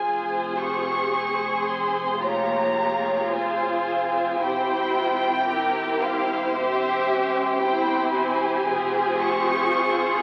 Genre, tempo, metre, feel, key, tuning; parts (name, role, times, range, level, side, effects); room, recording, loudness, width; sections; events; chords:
classical, slow romantic movement for string orchestra; 48-59 BPM; 4/4; rubato; F minor; A4 = 437 Hz
rich studio violin section; melody; 0.0-10.2 s; E5 to Db6; -29 LUFS; equal
warm symphonic violin section; second line; 0.0-10.2 s; E4 to Db5; -27 LUFS; equal
warm studio viola section; accompaniment; 0.0-10.2 s; Bb3 to Ab4; -33 LUFS; equal
rich studio double bass section; bass; 0.0-10.2 s; E1 to Ab1; -44 LUFS; equal
warm studio cello section; bass; 0.0-10.2 s; E4 to Ab4; -33 LUFS; equal
wet scoring stage reverb, RT60 1.9 s; very old 78 rpm record, vinyl crackle; -23 LUFS; mono
0.0-10.2 A section
0.0 Fm; 4.4 C/E; 8.7 Fm